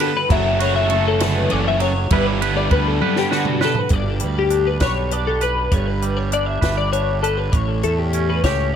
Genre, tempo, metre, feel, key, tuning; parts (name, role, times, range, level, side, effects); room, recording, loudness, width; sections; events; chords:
math rock and midwest emo; 66 BPM (dotted quarters); 6/8; straight; G lydian; A4 = 439 Hz
twangy electric guitar; accompaniment; 0.0-8.8 s; G2 to B4; -24 LUFS; right 9 dB
twelve-string electric guitar; arpeggios; 0.0-8.7 s; F#4 to E5; -21 LUFS; left 6 dB; analog chorus, digital delay, plate reverb
overdriven electric guitar; riff; 0.0-3.7 s; C#3 to D4; -23 LUFS; right 2 dB
compact cocktail drum kit; drums; 0.0-8.6 s; hi-hat, kick drum, ride cymbal, snare drum, toms; -22 LUFS; equal
fuzz fingered electric bass; bass; 0.3-8.8 s; F#1 to E2; -22 LUFS; equal; overdrive
moderate studio reverb, RT60 0.8 s; -16 LUFS; side -8 dB against mid
0.0-3.9 A section; 3.9-8.8 B section
drum fill 3.0-3.9
0.3 F#m7; 2.1 G69; 3.9 G; 7.5 A7